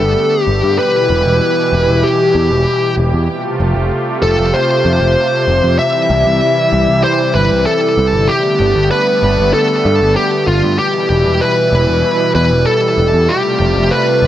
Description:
synthwave; 96 BPM; 4/4; straight; E phrygian; A4 = 440 Hz
high-gain lead guitar; melody; 0.0-14.3 s; F4 to E5; -13 LUFS; equal; distortion, tape echo
warm analog pad; sustained chords; 0.0-14.3 s; B2 to G4; -16 LUFS; equal; lush chorus
picked electric bass; bass; 0.0-14.3 s; E1 to G2; -15 LUFS; equal
moderate plate reverb, RT60 2.7 s; nothing above 10.3 kHz; -11 LUFS; side -12 dB against mid
0.0-14.3 A section
0.0 Gadd9; 0.8 Em; 3.3 Fadd9; 5.8 C; 8.3 Gadd9; 10.8 Em; 13.3 Fadd9

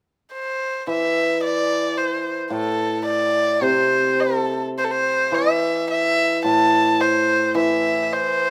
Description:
chinese traditional, Chinese chamber ensemble; 108 BPM; 2/4; rubato; A4 = 440 Hz
warm erhu; melody; 0.3-8.5 s; A4 to A5; -22 LUFS; equal
hammered dulcimer; accompaniment; 0.9-8.5 s; A2 to E3; -24 LUFS; equal
moderate recital hall reverb, RT60 1.5 s; close, detailed microphones; -20 LUFS; mono
0.3-8.5 A section

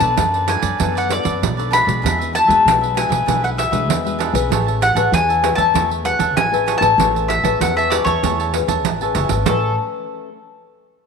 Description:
samba and choro; 97 BPM; 4/4; straight; A major; A4 = 438 Hz
bowl-back mandolin; melody; 0.0-9.8 s; A4 to B5; -18 LUFS; left 3 dB
cavaquinho; accompaniment; 0.0-9.7 s; D4 to A5; -25 LUFS; right 10 dB
nylon-string guitar; accompaniment; 0.0-10.3 s; B2 to C#5; -24 LUFS; left 11 dB
upright bass; bass; 0.0-9.8 s; F#1 to F#2; -23 LUFS; equal
pandeiro; percussion; 0.0-9.6 s; -22 LUFS; right 11 dB
moderate echo chamber reverb, RT60 1.9 s, small room ambience; 1960s-style stereo with parts hard left and right; -15 LUFS; side -5 dB against mid
0.0-9.5 A section; 9.5-11.1 B section
0.0 Bm9; 2.0 E9; 4.5 Amaj9

